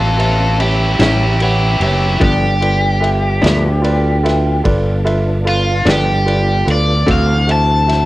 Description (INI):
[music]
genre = slow blues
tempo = 49 BPM (dotted quarters)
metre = 12/8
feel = straight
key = unclear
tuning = A4 = 439 Hz
[part]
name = cranked stack guitar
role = melody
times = 0.0-8.1 s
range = E4 to A5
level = -17 LUFS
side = equal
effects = overdrive, cassette tape
[part]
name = clear concert grand piano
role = accompaniment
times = 0.0-8.1 s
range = F4 to E6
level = -21 LUFS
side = right 1 dB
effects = cassette tape
[part]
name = tonewheel organ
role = sustained chords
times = 0.0-8.1 s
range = E3 to E5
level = -27 LUFS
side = equal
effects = none
[part]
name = fretless electric bass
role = bass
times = 0.0-8.1 s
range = F#1 to D2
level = -15 LUFS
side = equal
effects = none
[part]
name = vintage drum kit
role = drums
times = 0.2-8.1 s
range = kick drum, ride cymbal, snare drum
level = -23 LUFS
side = equal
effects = cassette tape
[part]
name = direct-recorded clean electric guitar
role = accompaniment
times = 1.0-7.3 s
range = G2 to F#4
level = -17 LUFS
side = left 2 dB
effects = tremolo, cassette tape
[sound]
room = small room reverb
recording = home recording on cassette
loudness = -12 LUFS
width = side -16 dB against mid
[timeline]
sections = 0.0-8.1 A section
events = overdriven electric guitar solo 0.0-8.1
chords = 0.0 A7; 2.2 G7; 7.1 D7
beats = 1.00 | 2.21 3.43 4.64 5.86 | 7.08